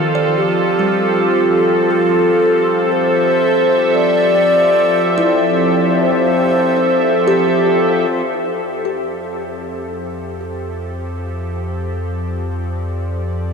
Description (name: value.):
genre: ambient.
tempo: free time.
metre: none.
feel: none.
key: F major.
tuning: A4 = 440 Hz.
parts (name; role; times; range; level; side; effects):
evolving wavetable pad; sustained chords; 0.0-13.5 s; F3 to F5; -16 LUFS; right 1 dB; chorus, built-in reverb.
kalimba; arpeggios; 0.0-11.1 s; Eb3 to D5; -24 LUFS; left 1 dB; ping-pong delay.
hand-pumped harmonium; drone; 0.0-8.2 s; F3 to C4; -24 LUFS; left 3 dB; none.
wooden-headed alto flute; melody; 0.4-7.6 s; G4 to D5; -17 LUFS; left 2 dB; ping-pong delay.
warm sub bass; bass; 8.1-13.5 s; F2; -24 LUFS; equal; none.
room: wet huge ambient reverb, RT60 8.6 s.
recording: dark, warm production.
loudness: -13 LUFS.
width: side -5 dB against mid.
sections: 0.0-8.1 A section; 8.1-13.5 B section.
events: none.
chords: 0.0 Fmaj9; 8.1 F6.